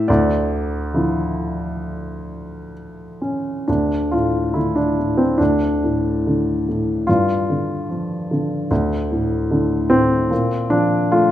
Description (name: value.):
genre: classical, lyrical solo piano.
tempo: 62-75 BPM.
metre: 4/4.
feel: rubato.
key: D harmonic minor, D minor from 3.7 s.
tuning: A4 = 440 Hz.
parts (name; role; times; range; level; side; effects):
dark baby grand piano; solo; 0.0-11.3 s; D2 to E5; -17 LUFS; equal; none.
room: moderate recital hall reverb, RT60 1.5 s.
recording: none.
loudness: -17 LUFS.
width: side -12 dB against mid.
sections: 0.0-3.7 A section; 3.7-11.3 B section.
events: none.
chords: 0.1 Dmadd9; 3.7 D5; 7.1 G5; 8.7 Dm; 10.3 Bb5.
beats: | 0.09 0.93 1.82 2.76 | 3.68 4.55 5.40 6.25 | 7.08 7.89 8.71 9.51 | 10.31 11.12.